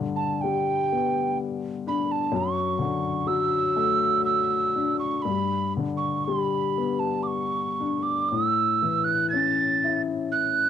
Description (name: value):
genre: celtic folk, Celtic slow air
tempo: 59-66 BPM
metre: 3/4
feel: rubato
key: unclear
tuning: A4 = 440 Hz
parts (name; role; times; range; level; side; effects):
- dark upright piano; accompaniment; 0.0-10.7 s; F#2 to E4; -26 LUFS; left 6 dB; cassette tape
- mellow hollow wooden whistle; melody; 0.2-10.7 s; G5 to A6; -25 LUFS; right 6 dB; cassette tape
room: moderate studio reverb, RT60 0.6 s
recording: home recording on cassette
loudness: -22 LUFS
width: side -9 dB against mid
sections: 0.0-10.7 A section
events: none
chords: 0.0 G; 2.3 Dadd9/F#; 5.3 G; 8.3 A6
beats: 0.45 1.40 | 2.33 3.29 4.28 | 5.27 6.28 7.30 | 8.32 9.34 10.35